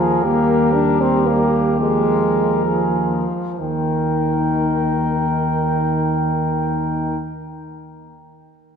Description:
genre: classical, brass quintet.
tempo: 62-81 BPM (dotted quarters).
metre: 6/8.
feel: rubato.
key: Eb major.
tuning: A4 = 441 Hz.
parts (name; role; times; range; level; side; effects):
dark trumpet; melody; 0.0-7.2 s; Bb4 to G5; -25 LUFS; left 8 dB; none.
warm flugelhorn; second line; 0.0-7.2 s; G4 to Bb4; -24 LUFS; right 4 dB; none.
mellow trombone; accompaniment; 0.0-7.2 s; Eb3 to G3; -26 LUFS; right 3 dB; none.
warm French horn; accompaniment; 0.0-7.2 s; Eb3 to D4; -21 LUFS; left 2 dB; none.
dark tuba; bass; 0.0-7.2 s; Eb2; -22 LUFS; right 2 dB; none.
room: wet church reverb, RT60 3.6 s.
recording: none.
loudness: -16 LUFS.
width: side -7 dB against mid.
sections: 0.0-3.6 A section; 3.6-7.3 B section.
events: slowing down 0.0-3.6.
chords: 0.2 Eb; 1.8 Bb5/Eb; 3.6 Eb.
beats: | 0.23 0.99 | 1.79 2.65 | 3.58 4.52 | 5.44 6.37.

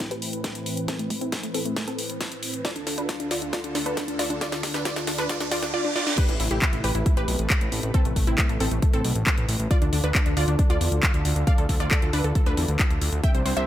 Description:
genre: uplifting trance.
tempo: 136 BPM.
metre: 4/4.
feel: straight.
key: A minor.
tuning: A4 = 441 Hz.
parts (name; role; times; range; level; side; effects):
wide unison pluck; melody; 0.0-13.6 s; A3 to G5; -28 LUFS; equal; sidechain pumping, digital delay.
filtered supersaw swell; sustained chords; 0.0-13.7 s; D2 to B4; -33 LUFS; equal; sidechain pumping.
electronic kick drum; drums; 0.0-13.3 s; none; -23 LUFS; equal; high-pass filter on kick.
house drum kit; drums; 0.0-13.7 s; crash cymbal, handclaps, hi-hat, snare drum; -28 LUFS; left 1 dB; high-pass filter on snare, high-pass filter on hats, high-pass filter on cymbals.
riser and reverse cymbal; sound effects; 2.1-6.2 s; none; -35 LUFS; right 4 dB; none.
fat analog bass; bass; 6.3-13.7 s; A1 to E2; -25 LUFS; equal; sidechain pumping.
room: digital ambience.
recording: none.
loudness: -22 LUFS.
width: side -12 dB against mid.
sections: 0.0-6.2 A section; 6.2-13.7 B section.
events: build-up 0.0-6.2; drum fill 0.0-5.7, 6.0; filter sweep on synth pluck 0.0-6.2; riser 2.1-6.2; reverse cymbal 5.3-6.2; drop 6.2-13.7.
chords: 0.0 Amadd9; 2.6 Dm; 6.2 Amadd9; 9.7 Dm.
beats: 0.00 0.44 | 0.88 1.32 1.76 2.21 | 2.65 3.09 3.53 3.97 | 4.41 4.85 5.29 5.74 | 6.18 6.62 7.06 7.50 | 7.94 8.38 8.82 9.27 | 9.71 10.15 10.59 11.03 | 11.47 11.91 12.35 12.79 | 13.24.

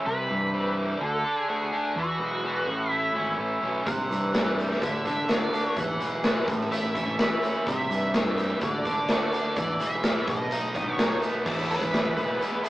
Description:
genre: classic rock.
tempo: 126 BPM.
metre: 4/4.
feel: straight.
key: unclear.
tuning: A4 = 439 Hz.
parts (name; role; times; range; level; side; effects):
crunchy overdriven guitar; riff; 0.0-12.7 s; A2 to F#4; -29 LUFS; right 1 dB; spring reverb.
overdriven electric guitar; riff; 0.0-12.7 s; A2 to E4; -34 LUFS; left 2 dB; none.
octave-fuzz lead guitar; melody; 0.1-12.7 s; F#4 to F#5; -31 LUFS; equal; wah, distortion.
growling fingered electric bass; bass; 0.1-12.4 s; G#1 to G2; -33 LUFS; equal; overdrive.
big rock drum kit; drums; 3.9-12.7 s; crash cymbal, hi-hat, kick drum, snare drum; -27 LUFS; equal; none.
room: moderate booth ambience, RT60 0.2 s.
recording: rough rehearsal-room recording, AM radio sound.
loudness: -24 LUFS.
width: side -16 dB against mid.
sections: 0.0-11.5 A section; 11.5-12.7 B section.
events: lead electric guitar solo 11.5-12.7.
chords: 0.1 C; 1.0 D; 2.0 E; 2.7 A; 3.9 C; 4.8 D; 5.8 E; 6.5 A; 7.7 C; 8.6 D; 9.6 E; 10.3 B; 11.5 E.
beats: | 0.06 0.53 1.01 1.49 | 1.96 2.44 2.91 3.39 | 3.87 4.34 4.82 5.29 | 5.77 6.24 6.72 7.19 | 7.67 8.14 8.62 9.09 | 9.57 10.04 10.52 10.99 | 11.47 11.94 12.41.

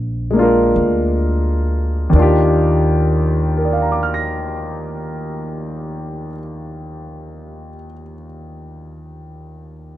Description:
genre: jazz ballad.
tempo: 43 BPM.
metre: 4/4.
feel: swing 68% on 8ths.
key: Eb major.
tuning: A4 = 440 Hz.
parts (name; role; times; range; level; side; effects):
upright bass; bass; 0.0-6.2 s; Bb1 to Eb2; -18 LUFS; equal; none.
clear concert grand piano; accompaniment; 0.3-10.0 s; Eb2 to Bb6; -18 LUFS; equal; none.
room: studio reverb.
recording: dry, close 1970s-style studio recording.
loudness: -15 LUFS.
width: side -13 dB against mid.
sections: 0.0-2.1 A section; 2.1-7.8 B section.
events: slowing down 0.0-2.1.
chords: 0.0 Bb7; 2.1 Ebmaj7.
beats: 0.77 | 2.15 3.56 4.96 6.37.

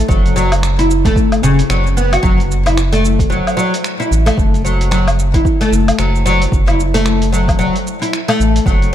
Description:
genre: organic downtempo.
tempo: 112 BPM.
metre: 4/4.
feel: swing 59% on 16ths.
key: F# minor.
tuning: A4 = 437 Hz.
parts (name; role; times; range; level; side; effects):
round analog bass; bass; 0.0-8.9 s; F#1 to A1; -15 LUFS; equal; sidechain pumping.
oud; arpeggios; 0.1-8.9 s; C#3 to F#4; -15 LUFS; left 2 dB; ping-pong delay.
dusty soul sampler-style drum kit; drums; 0.1-8.9 s; finger snaps, hi-hat, shaker, woodblock; -22 LUFS; equal; overdrive.
electronic kick drum; drums; 0.1-8.8 s; none; -16 LUFS; equal; none.
room: light reverb.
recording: dark, warm production.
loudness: -11 LUFS.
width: side -11 dB against mid.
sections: 0.0-8.9 A section.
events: none.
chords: 0.0 N.C.; 2.2 F#m.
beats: | 0.09 0.63 1.16 1.70 | 2.23 2.77 3.31 3.84 | 4.38 4.91 5.45 5.99 | 6.52 7.06 7.59 8.13 | 8.66.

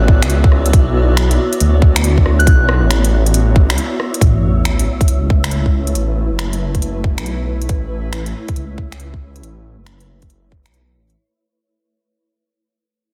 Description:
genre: future garage.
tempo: 138 BPM.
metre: 4/4.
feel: swing 65% on 16ths.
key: unclear.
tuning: A4 = 440 Hz.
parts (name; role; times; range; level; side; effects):
granular cloud pad; sustained chords; 0.0-11.2 s; A3 to D5; -26 LUFS; equal; built-in reverb, sidechain pumping.
swelling detuned saw bass; bass; 0.0-11.2 s; F#1 to D2; -18 LUFS; equal; sidechain pumping.
wind-like tuned noise texture; texture; 0.0-11.2 s; E4; -31 LUFS; equal; built-in reverb.
electronic kick drum; drums; 0.1-10.6 s; none; -14 LUFS; equal; none.
organic electronic drum kit; drums; 0.2-11.2 s; finger snaps, hi-hat, rim click; -24 LUFS; equal; soft clipping on snare.
soft synth bell; melody; 2.4-2.6 s; F#6; -24 LUFS; equal; chorus, delay.
sub drop; sound effects; 4.2-6.0 s; none; -24 LUFS; equal; none.
room: light reverb.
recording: dense, heavily limited modern master.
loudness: -15 LUFS.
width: mono.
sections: 0.0-4.2 A section; 4.2-11.2 B section.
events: break 3.8-4.2; fade-out 4.2-11.2; impact 4.2-6.0.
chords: 0.0 Bm7; 4.2 A69.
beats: 0.30 | 0.73 1.17 1.60 2.04 | 2.47 2.91 3.34 3.78 | 4.21 4.65 5.08 5.52 | 5.95 6.38 6.82 7.25 | 7.69 8.12 8.56 8.99 | 9.43 9.86 10.30 10.73.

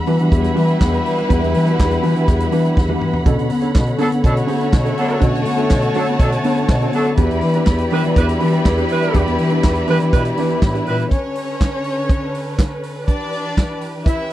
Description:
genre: disco.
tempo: 122 BPM.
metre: 4/4.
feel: straight.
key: B minor.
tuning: A4 = 436 Hz.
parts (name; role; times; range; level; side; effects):
mellow tine electric piano; accompaniment; 0.0-11.1 s; D3 to A4; -22 LUFS; left 4 dB; slow stereo tremolo.
dark studio string section; sustained chords; 0.0-14.3 s; D3 to B5; -25 LUFS; right 1 dB; none.
mellow electric guitar; accompaniment; 0.1-11.0 s; D4 to C#5; -27 LUFS; right 9 dB; none.
dark bass clarinet; bass; 0.1-11.1 s; E2 to B3; -19 LUFS; equal; none.
vintage drum kit; drums; 0.1-14.3 s; handclaps, hi-hat, kick drum, snare drum, toms; -16 LUFS; equal; none.
warm studio violin section; second line; 0.3-14.3 s; G3 to E5; -23 LUFS; left 2 dB; none.
mellow horn section; stabs; 4.0-11.0 s; F#3 to B4; -21 LUFS; right 3 dB; none.
room: little or no reverb.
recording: dry, close 1970s-style studio recording.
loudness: -15 LUFS.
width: side -14 dB against mid.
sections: 0.0-11.1 A section; 11.1-14.3 B section.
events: drum fill 2.8-3.3.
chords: 0.0 Em7; 3.3 Bm9; 7.2 Em7; 11.1 Bm9; 13.1 Em7.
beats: 0.33 0.81 | 1.30 1.79 2.28 2.77 | 3.26 3.75 4.24 4.73 | 5.22 5.71 6.21 6.70 | 7.19 7.68 8.17 8.66 | 9.15 9.64 10.13 10.62 | 11.12 11.61 12.10 12.59 | 13.08 13.58 14.07.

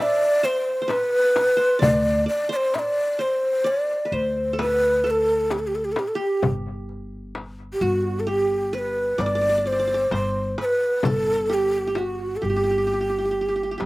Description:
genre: Turkish makam ensemble.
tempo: 130 BPM (eighths).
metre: 10/8.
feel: straight.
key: G makam rast.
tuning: A4 = 441 Hz.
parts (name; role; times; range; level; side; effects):
breathy mellow ney; melody; 0.0-13.9 s; F#4 to E5; -21 LUFS; equal; slapback echo.
qanun; second line; 0.0-13.8 s; F#4 to E5; -31 LUFS; right 2 dB; slapback echo.
darbuka; percussion; 0.9-13.9 s; none; -29 LUFS; left 1 dB; none.
frame drum; percussion; 0.9-13.9 s; none; -29 LUFS; left 4 dB; none.
upright bass; bass; 1.8-13.9 s; G1 to D2; -28 LUFS; left 1 dB; none.
room: little or no reverb.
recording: recorded outdoors, with no room sound.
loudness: -20 LUFS.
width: side -19 dB against mid.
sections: 0.0-6.4 A section; 6.4-13.9 B section.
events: none.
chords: none.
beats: 0.44 0.90 1.36 | 1.82 2.28 2.74 3.20 3.66 4.12 4.58 5.04 5.50 5.97 | 6.43 6.89 7.35 7.81 8.27 8.73 9.19 9.65 10.12 10.58 | 11.04 11.50 11.96 12.42 12.89 13.35 13.81.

